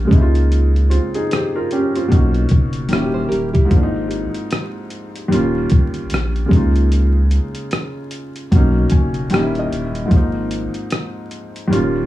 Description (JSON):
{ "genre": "lo-fi hip hop", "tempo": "75 BPM", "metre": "4/4", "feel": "swing 61% on 16ths", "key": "Ab major", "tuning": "A4 = 439 Hz", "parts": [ { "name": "felt-muted upright piano", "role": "accompaniment", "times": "0.0-12.1 s", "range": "Eb2 to Ab5", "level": "-19 LUFS", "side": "equal", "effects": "cassette tape, low-pass filter" }, { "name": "saturated sub bass", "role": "bass", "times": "0.0-12.1 s", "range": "Eb1 to Db2", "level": "-18 LUFS", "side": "equal", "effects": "none" }, { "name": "dusty soul sampler-style drum kit", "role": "drums", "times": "0.1-11.9 s", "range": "hi-hat, kick drum, rim click", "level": "-16 LUFS", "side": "equal", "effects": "none" }, { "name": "nylon-string guitar", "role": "second line", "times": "3.1-3.9 s", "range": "Fb4 to C5", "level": "-26 LUFS", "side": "right 3 dB", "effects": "low-pass filter, analog delay" } ], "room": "light reverb", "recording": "vinyl crackle, small room ambience", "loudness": "-15 LUFS", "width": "side -15 dB against mid", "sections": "0.0-12.1 A section", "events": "none", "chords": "0.1 Db69; 2.1 Bmaj9; 2.9 Eb7b9; 3.7 Ab69; 5.3 Eb7; 6.5 Db69; 8.5 Bmaj9; 9.3 Eb7b9; 10.1 Ab69" }